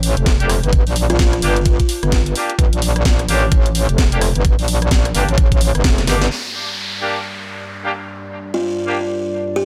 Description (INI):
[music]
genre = bass house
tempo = 129 BPM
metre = 4/4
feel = swing 60% on 16ths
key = G minor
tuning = A4 = 440 Hz
[part]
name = metallic wobble bass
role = bass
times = 0.0-6.3 s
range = F1 to Bb1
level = -19 LUFS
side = equal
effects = chorus, tube saturation, sidechain pumping
[part]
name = house drum kit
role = drums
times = 0.0-6.3 s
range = hi-hat, rim click, snare drum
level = -24 LUFS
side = equal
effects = overdrive, low-pass filter on hats, low-pass filter on snare, low-pass filter on room
[part]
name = electronic kick drum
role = drums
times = 0.3-6.0 s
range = none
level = -17 LUFS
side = equal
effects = none
[part]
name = bright horn section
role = stabs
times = 0.4-9.0 s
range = Bb3 to G4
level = -26 LUFS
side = equal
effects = sidechain pumping, digital delay
[part]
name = buzzing kalimba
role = melody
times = 1.1-1.3, 8.5-9.7 s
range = F4 to G4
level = -25 LUFS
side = equal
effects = digital delay
[part]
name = dark analog pad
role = sustained chords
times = 6.3-9.7 s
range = G3 to D5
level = -30 LUFS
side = equal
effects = subtle chorus, sidechain pumping
[part]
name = downlifter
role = sound effects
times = 6.3-9.7 s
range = none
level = -29 LUFS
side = equal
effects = none
[sound]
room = little or no reverb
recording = none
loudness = -17 LUFS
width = mono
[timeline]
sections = 0.0-6.3 A section; 6.3-9.7 B section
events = drum fill 6.0-6.3; band accent 6.2; filter sweep on analog synth pad 6.3-9.7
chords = 0.0 Gm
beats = 0.26 | 0.73 1.19 1.66 2.12 | 2.59 3.05 3.52 3.98 | 4.45 4.91 5.38 5.84 | 6.31 6.77 7.24 7.70 | 8.17 8.63 9.10 9.56